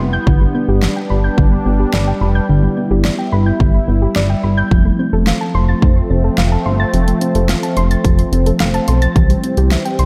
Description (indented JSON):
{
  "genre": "synth-pop",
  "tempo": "108 BPM",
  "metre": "4/4",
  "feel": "straight",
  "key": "G mixolydian",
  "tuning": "A4 = 440 Hz",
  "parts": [
    { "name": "sweeping resonant pad", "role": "sustained chords", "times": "0.0-10.1 s", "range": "E3 to E4", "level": "-21 LUFS", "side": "equal", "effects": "chorus" },
    { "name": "soft round pluck", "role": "arpeggios", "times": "0.0-10.1 s", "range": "D3 to A6", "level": "-22 LUFS", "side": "equal", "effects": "chorus, digital delay" },
    { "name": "chorused synth bass", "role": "bass", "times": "0.0-10.1 s", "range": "F1 to C2", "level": "-17 LUFS", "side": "equal", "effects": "none" },
    { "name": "pop drum kit", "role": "drums", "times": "0.3-10.1 s", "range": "hi-hat, kick drum, snare drum", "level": "-19 LUFS", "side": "equal", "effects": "none" }
  ],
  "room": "moderate lush hall reverb, RT60 1.9 s",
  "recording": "dark, warm production",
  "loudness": "-14 LUFS",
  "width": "mono",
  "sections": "0.0-10.1 A section",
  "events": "none",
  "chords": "0.3 G; 4.7 F; 9.2 C",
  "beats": "| 0.27 0.82 1.38 1.94 | 2.49 3.05 3.60 4.16 | 4.71 5.27 5.82 6.38 | 6.93 7.49 8.05 8.60 | 9.16 9.71"
}